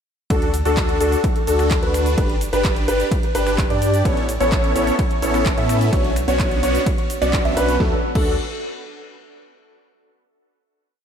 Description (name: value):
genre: EDM, festival progressive house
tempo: 128 BPM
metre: 4/4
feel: straight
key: D major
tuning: A4 = 440 Hz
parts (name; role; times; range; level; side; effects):
- dark concert grand piano; arpeggios; 0.3-8.3 s; A4 to E5; -23 LUFS; equal; sidechain pumping, tape echo
- supersaw chords; riff; 0.3-8.3 s; B3 to E5; -22 LUFS; equal; sidechain pumping, tape echo
- saturated sub bass; bass; 0.3-8.4 s; G1 to A2; -23 LUFS; equal; sidechain pumping
- big-room dance drum kit; drums; 0.3-8.2 s; crash cymbal, finger snaps, handclaps, hi-hat, ride cymbal, shaker, snare drum; -30 LUFS; equal; none
- electronic kick drum; drums; 0.3-8.2 s; none; -21 LUFS; equal; overdrive
room: moderate plate reverb, RT60 2.1 s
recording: dreamy mix soaked in reverb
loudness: -16 LUFS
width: side -8 dB against mid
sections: 0.3-7.8 drop; 7.8-9.7 final chord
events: drop 0.3-7.8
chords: 0.3 D; 2.2 G; 4.1 Aadd9; 5.9 Bmadd9; 7.8 D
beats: | 0.30 0.77 1.24 1.71 | 2.18 2.65 3.12 3.58 | 4.05 4.52 4.99 5.46 | 5.93 6.40 6.87 7.33 | 7.80 8.27